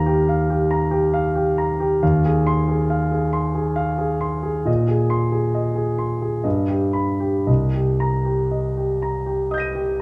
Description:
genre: classical, impressionist solo piano.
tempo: 56-70 BPM.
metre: 3/4.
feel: rubato.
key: C minor.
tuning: A4 = 440 Hz.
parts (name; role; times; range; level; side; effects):
warm grand piano; solo; 0.0-10.0 s; C2 to Eb7; -21 LUFS; equal; none.
room: moderate recital hall reverb, RT60 1.4 s.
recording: dark, warm production.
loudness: -21 LUFS.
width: mono.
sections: 0.0-10.0 A section.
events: none.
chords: 0.0 Ebadd9; 2.0 Ab6/Eb; 4.7 Bb9sus4; 6.5 Gaug; 7.5 Cm7.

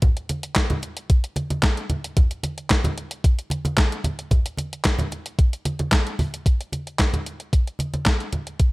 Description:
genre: funk.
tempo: 112 BPM.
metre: 4/4.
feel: straight.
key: none.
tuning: none.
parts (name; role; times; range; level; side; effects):
crisp 8-bit digital drum machine; drums; 0.0-8.7 s; handclaps, hi-hat, kick drum, snare drum; -19 LUFS; equal; gated reverb.
congas; percussion; 0.0-8.7 s; none; -27 LUFS; right 1 dB; none.
room: little or no reverb.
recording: none.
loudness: -20 LUFS.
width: side -22 dB against mid.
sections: 0.0-6.5 A section; 6.5-8.7 B section.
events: none.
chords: none.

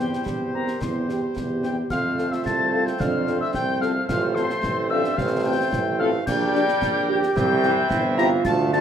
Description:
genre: military-style march for wind band.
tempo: 110 BPM.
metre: 2/4.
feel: straight.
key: F major.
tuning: A4 = 440 Hz.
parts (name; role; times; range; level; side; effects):
dark cornet; melody; 0.0-8.8 s; G4 to Bb5; -30 LUFS; left 2 dB; none.
clear woodwind section; second line; 0.0-8.8 s; G4 to F5; -33 LUFS; equal; none.
mellow euphonium; second line; 0.0-8.8 s; C4 to G4; -28 LUFS; right 5 dB; none.
mellow wooden piccolo; second line; 0.0-8.8 s; G5 to Bb6; -28 LUFS; left 4 dB; none.
mellow French horn section; accompaniment; 0.0-8.8 s; A3 to A4; -27 LUFS; left 5 dB; none.
clear trombone section; sustained chords; 0.0-8.8 s; E3 to D4; -30 LUFS; right 2 dB; none.
warm tuba; bass; 0.0-8.8 s; G1 to F2; -26 LUFS; right 2 dB; none.
concert snare drum, concert bass drum and clash cymbals; drums; 0.1-8.8 s; none; -31 LUFS; left 1 dB; none.
room: wet large studio reverb, RT60 0.8 s.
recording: none.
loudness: -20 LUFS.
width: side -8 dB against mid.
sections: 0.0-8.8 A section.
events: none.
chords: 0.0 C/E; 1.9 F; 4.1 F/A; 6.3 Gm/Bb; 7.4 C.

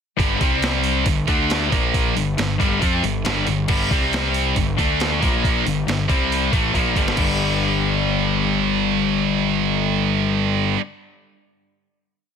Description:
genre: hard rock.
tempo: 138 BPM.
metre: 4/4.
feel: straight.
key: G minor.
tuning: A4 = 444 Hz.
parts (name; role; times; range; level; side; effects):
cranked stack guitar; riff; 0.2-10.8 s; G2 to F4; -22 LUFS; left 11 dB; overdrive.
scooped high-gain guitar; riff; 0.2-10.8 s; G2 to F4; -22 LUFS; right 15 dB; distortion.
fuzz picked electric bass; bass; 0.2-10.7 s; G1 to F2; -25 LUFS; equal; overdrive.
boom bap sampler-style drum kit; drums; 0.2-7.3 s; crash cymbal, hi-hat, kick drum, snare drum; -23 LUFS; equal; none.
room: little or no reverb.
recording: dense, heavily limited modern master.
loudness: -17 LUFS.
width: side -7 dB against mid.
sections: 0.2-7.2 riff; 7.2-10.6 final chord.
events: drum fill 6.7-7.2.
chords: 0.2 G5; 0.4 C5; 1.1 G5; 1.3 D5; 1.7 Bb5; 2.2 G5; 3.9 C5; 4.6 G5; 4.8 D5; 5.2 Bb5; 5.7 G5; 6.1 C5; 6.5 Gm; 7.2 G5.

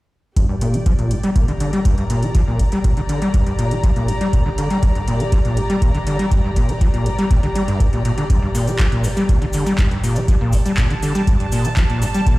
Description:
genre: acid house.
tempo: 121 BPM.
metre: 4/4.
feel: straight.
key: G minor.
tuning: A4 = 441 Hz.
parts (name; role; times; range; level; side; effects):
overdriven acid bass; riff; 0.4-12.4 s; F2 to G3; -19 LUFS; equal; distortion, analog chorus, tape echo.
electro analog drum machine; drums; 0.4-12.4 s; handclaps, hi-hat; -30 LUFS; equal; overdrive.
electronic kick drum; drums; 0.4-12.4 s; none; -18 LUFS; equal; overdrive.
dark chamber string section; texture; 0.4-12.4 s; G4 to Bb5; -27 LUFS; equal; sidechain pumping.
cabasa; percussion; 8.3-12.4 s; none; -36 LUFS; left 3 dB; none.
room: small room reverb.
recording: played on a big sound system in a bare room, stone room reverb.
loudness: -15 LUFS.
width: side -19 dB against mid.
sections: 0.4-12.4 A section.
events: none.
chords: 0.4 Gm.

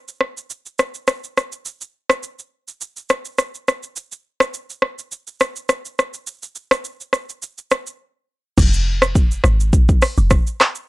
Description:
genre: afrobeats.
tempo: 104 BPM.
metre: 4/4.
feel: swing 55% on 16ths.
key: unclear.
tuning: A4 = 440 Hz.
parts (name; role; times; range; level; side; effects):
afro-pop drum kit; drums; 0.1-10.9 s; crash cymbal, handclaps, hi-hat, kick drum, rim click, shaker; -17 LUFS; equal; vintage 12-bit sampler grit.
deep log drum bass; bass; 8.6-10.4 s; F1 to Bb1; -17 LUFS; equal; none.
room: little or no reverb.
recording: dry, gritty hardware recording.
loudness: -17 LUFS.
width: side -20 dB against mid.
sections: 0.0-8.6 A section; 8.6-10.9 B section.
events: break 8.0-8.6.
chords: none.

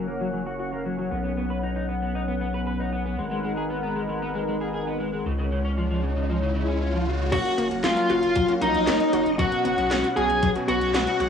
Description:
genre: synthwave.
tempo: 116 BPM.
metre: 4/4.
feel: straight.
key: F# major.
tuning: A4 = 439 Hz.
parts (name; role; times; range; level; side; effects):
warm analog pad; sustained chords; 0.0-11.3 s; F#3 to F#5; -30 LUFS; equal; chorus, vintage 12-bit sampler grit.
electric guitar at the edge of break-up; riff; 0.0-7.3 s; C#3 to B4; -32 LUFS; equal; analog chorus, analog delay.
round analog bass; bass; 0.0-11.3 s; F#1 to C#2; -30 LUFS; left 1 dB; sidechain pumping.
riser; sound effects; 4.8-7.3 s; none; -34 LUFS; left 1 dB; none.
smooth overdriven lead guitar; melody; 7.3-11.3 s; D#4 to G#4; -22 LUFS; left 1 dB; cassette tape, analog delay.
string machine, violins; second line; 7.3-11.3 s; D#5 to G#5; -29 LUFS; left 2 dB; ensemble chorus, cassette tape, analog delay.
wide unison pluck; arpeggios; 7.3-11.3 s; F#3 to F#4; -30 LUFS; left 4 dB; analog delay.
clear electric grand piano; stabs; 7.3-11.3 s; G#2 to B4; -31 LUFS; right 5 dB; none.
80s electronic pad drums; drums; 7.3-11.3 s; crash cymbal, handclaps, hi-hat, snare drum; -30 LUFS; equal; overdrive, cassette tape.
electronic kick drum; drums; 7.3-10.5 s; none; -27 LUFS; equal; cassette tape.
room: light reverb, digital ambience.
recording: home recording on cassette, low-pass filter.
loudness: -22 LUFS.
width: side -7 dB against mid.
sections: 0.0-7.3 A section; 7.3-11.3 B section.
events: riser 4.8-7.3.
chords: 0.0 F#; 1.1 Bsus2; 3.2 G#m7; 5.3 C#sus4; 7.3 F#; 9.4 Bsus2.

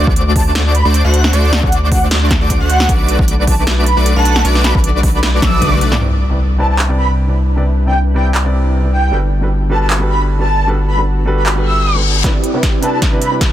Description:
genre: future bass.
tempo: 154 BPM.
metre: 4/4.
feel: swing 54% on 16ths, half-time.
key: unclear.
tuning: A4 = 440 Hz.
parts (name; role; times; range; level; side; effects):
airy dreamy lead; arpeggios; 0.0-6.0 s; D6 to F#6; -24 LUFS; equal; chorus, phaser, sidechain pumping, digital delay.
big bright polysynth; riff; 0.0-6.0, 12.2-13.5 s; A3 to F#5; -19 LUFS; right 1 dB; chorus, sidechain pumping, digital delay.
saturated sub bass; bass; 0.0-12.2 s; G1 to D2; -14 LUFS; equal; sidechain pumping.
electronic kick drum; drums; 0.1-5.7, 12.2-13.5 s; none; -15 LUFS; equal; none.
big-room dance drum kit; drums; 0.2-13.5 s; handclaps, hi-hat, snare drum, toms; -20 LUFS; equal; high-pass filter on snare, high-pass filter on hats, high-pass filter on toms, high-pass filter on room.
breathy flute-like synth lead; melody; 0.4-13.3 s; F#5 to E6; -20 LUFS; equal; ensemble chorus, sidechain pumping, digital delay.
warm concert grand piano; accompaniment; 6.0-13.5 s; C3 to D5; -21 LUFS; right 1 dB; sidechain pumping, digital delay.
shimmering ambient pad; sustained chords; 7.3-13.5 s; C3 to B4; -26 LUFS; equal; chorus, built-in reverb, sidechain pumping.
impact and reverse cymbal; sound effects; 6.2-7.6, 11.6-12.2 s; none; -24 LUFS; left 4 dB; none.
room: little or no reverb.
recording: dense, heavily limited modern master.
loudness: -11 LUFS.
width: side -12 dB against mid.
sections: 0.0-6.0 A section; 6.0-12.2 B section; 12.2-13.5 C section.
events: drop 0.0-6.0; drum fill 5.4-6.0, 12.2-13.5; impact 6.0-7.6; reverse cymbal 11.6-12.2; build-up 12.2-13.5.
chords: 0.0 D7; 2.9 Bm7; 6.0 Cmaj9; 9.1 Gmaj9; 12.2 Cmaj9.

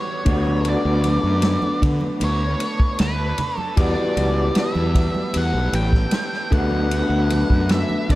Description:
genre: psychedelic rock.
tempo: 77 BPM.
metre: 4/4.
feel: straight.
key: unclear.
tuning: A4 = 440 Hz.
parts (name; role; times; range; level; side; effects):
octave-fuzz lead guitar; melody; 0.0-8.2 s; B4 to G5; -26 LUFS; equal; wah, distortion, dub echo.
combo organ; sustained chords; 0.0-8.2 s; E3 to B4; -35 LUFS; right 6 dB; lush chorus.
electric guitar through a small old amp; riff; 0.0-8.2 s; D3 to F#4; -23 LUFS; left 1 dB; rotary speaker, dub echo.
fuzz fingered electric bass; bass; 0.3-8.2 s; A1 to D3; -22 LUFS; equal; overdrive.
vintage drum kit; drums; 0.3-8.2 s; kick drum, ride cymbal, snare drum; -23 LUFS; equal; none.
congas; percussion; 0.3-8.2 s; none; -33 LUFS; right 4 dB; none.
room: little or no reverb.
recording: echo-heavy mix.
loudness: -17 LUFS.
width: side -17 dB against mid.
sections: 0.0-8.2 A section.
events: none.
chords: 0.3 D6; 3.8 Emadd9; 6.5 D6.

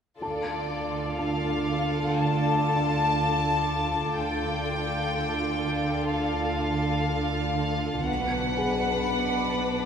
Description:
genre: cinematic, suspense film score.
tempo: 61 BPM.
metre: 4/4.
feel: straight.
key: D minor.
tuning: A4 = 441 Hz.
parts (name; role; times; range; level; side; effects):
clear studio violin section; melody; 0.2-9.9 s; D5 to A5; -29 LUFS; left 3 dB; none.
warm studio violin section; second line; 0.2-9.9 s; D4 to B4; -31 LUFS; left 1 dB; none.
dark studio cello section; bass; 0.2-9.9 s; B2 to D3; -30 LUFS; right 3 dB; none.
dark studio double bass section; bass; 0.2-9.9 s; B1 to D2; -31 LUFS; right 1 dB; none.
dark studio violin section; texture; 0.2-9.9 s; B5 to A6; -39 LUFS; left 4 dB; none.
felt-muted upright piano; texture; 0.2-9.9 s; G#4 to A5; -36 LUFS; left 3 dB; none.
room: wet church reverb, RT60 2.6 s.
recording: recorded in a church or concert hall.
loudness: -24 LUFS.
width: side -7 dB against mid.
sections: 0.2-9.9 A section.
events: none.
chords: 0.2 Dm; 8.1 Bm.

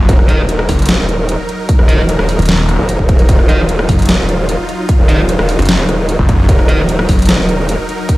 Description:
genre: heavy wobble dubstep.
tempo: 150 BPM.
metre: 4/4.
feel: half-time.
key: Eb minor.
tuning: A4 = 440 Hz.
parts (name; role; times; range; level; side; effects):
supersaw chords; sustained chords; 0.0-8.2 s; Gb3 to Bb4; -19 LUFS; right 1 dB; sidechain pumping.
snarling distorted saw bass; bass; 0.0-7.3 s; Eb1 to Gb1; -13 LUFS; equal; distortion, overdrive.
growl bass; bass; 0.1-7.8 s; Eb1 to Gb1; -14 LUFS; equal; chorus, overdrive.
dubstep drum kit; drums; 0.1-8.2 s; hi-hat, rim click, snare drum; -17 LUFS; equal; overdrive.
electronic kick drum; drums; 0.1-8.2 s; none; -11 LUFS; equal; overdrive.
thick fuzz guitar; stabs; 0.3-6.8 s; Eb4 to Eb5; -21 LUFS; right 1 dB; distortion, dub echo.
room: digital ambience.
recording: played on a big sound system in a bare room, stone room reverb.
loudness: -10 LUFS.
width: side -18 dB against mid.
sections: 0.0-8.2 A section.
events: none.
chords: 0.0 Ebmadd9.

